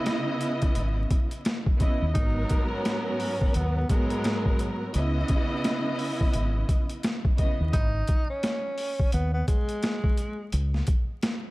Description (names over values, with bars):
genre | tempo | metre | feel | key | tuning
hip hop, boom-bap hip-hop | 86 BPM | 4/4 | swing 60% on 16ths | G# minor | A4 = 442 Hz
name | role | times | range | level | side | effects
warm studio string section | accompaniment | 0.0-7.7 s | G#2 to D#5 | -29 LUFS | right 1 dB | high-pass filter, low-pass filter
boom bap sampler-style drum kit | drums | 0.1-11.4 s | hi-hat, kick drum, snare drum | -26 LUFS | equal | overdrive
deep dub fingered electric bass | bass | 0.8-10.8 s | G#1 to D#2 | -25 LUFS | equal | none
breathy tenor saxophone | melody | 2.1-10.5 s | G#3 to D#4 | -32 LUFS | equal | high-pass filter, low-pass filter
room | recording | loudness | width
light reverb | dark, warm production, vinyl crackle | -24 LUFS | side -20 dB against mid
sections
0.0-11.5 A section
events
none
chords
0.0 C#m9; 2.2 G#m9; 4.9 C#m9; 7.7 G#5; 10.5 N.C.